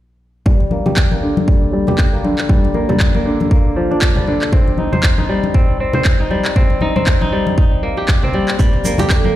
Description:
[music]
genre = afro house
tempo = 118 BPM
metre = 4/4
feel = swing 57% on 16ths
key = G minor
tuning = A4 = 440 Hz
[part]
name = kora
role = arpeggios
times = 0.5-9.4 s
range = D3 to C5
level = -18 LUFS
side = left 1 dB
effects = sidechain pumping, low-pass filter, ping-pong delay
[part]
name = electronic kick drum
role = drums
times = 0.5-9.2 s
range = none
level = -14 LUFS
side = equal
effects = none
[part]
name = congas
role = percussion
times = 0.5-9.3 s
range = none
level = -21 LUFS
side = left 2 dB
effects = none
[part]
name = electronic handclaps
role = drums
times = 1.0-9.2 s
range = none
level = -22 LUFS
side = equal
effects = overdrive
[part]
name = dark analog pad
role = sustained chords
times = 8.6-9.4 s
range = G3 to A4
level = -21 LUFS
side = right 6 dB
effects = chorus, sidechain pumping
[part]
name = tube shaker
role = percussion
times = 8.6-9.2 s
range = none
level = -28 LUFS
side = right 4 dB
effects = none
[part]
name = djembe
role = percussion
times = 9.0-9.1 s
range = none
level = -26 LUFS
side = right 3 dB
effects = none
[sound]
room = light reverb, small room ambience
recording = played on a big sound system in a bare room, large studio reverb, faint mains hum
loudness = -13 LUFS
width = side -14 dB against mid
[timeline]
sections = 0.5-9.4 A section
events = filter sweep on kora 0.5-9.4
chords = 0.5 Gm7; 4.5 Cm/G; 8.6 Gm

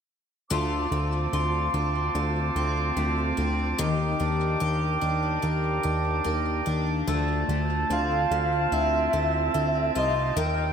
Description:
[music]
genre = dream pop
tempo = 73 BPM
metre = 4/4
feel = straight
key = D minor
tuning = A4 = 440 Hz
[part]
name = warm woodwind section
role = sustained chords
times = 0.5-10.7 s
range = Eb3 to D6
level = -29 LUFS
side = right 5 dB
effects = shimmer reverb
[part]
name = picked twelve-string acoustic guitar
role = arpeggios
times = 0.5-10.7 s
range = Eb3 to G4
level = -29 LUFS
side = left 3 dB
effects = analog chorus, shimmer reverb, ping-pong delay
[part]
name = fat analog bass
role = bass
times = 0.5-10.7 s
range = C2 to Eb2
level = -27 LUFS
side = equal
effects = none
[part]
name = soft octave-layered synth lead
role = melody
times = 7.9-10.7 s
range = Eb5 to F5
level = -26 LUFS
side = equal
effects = chorus, shimmer reverb, ping-pong delay
[sound]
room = moderate plate reverb, RT60 2.9 s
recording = none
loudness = -23 LUFS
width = side -7 dB against mid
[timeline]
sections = 0.5-7.1 A section; 7.1-10.7 B section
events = none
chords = 0.5 Dm7; 3.8 Ebmaj7; 7.1 Dm7

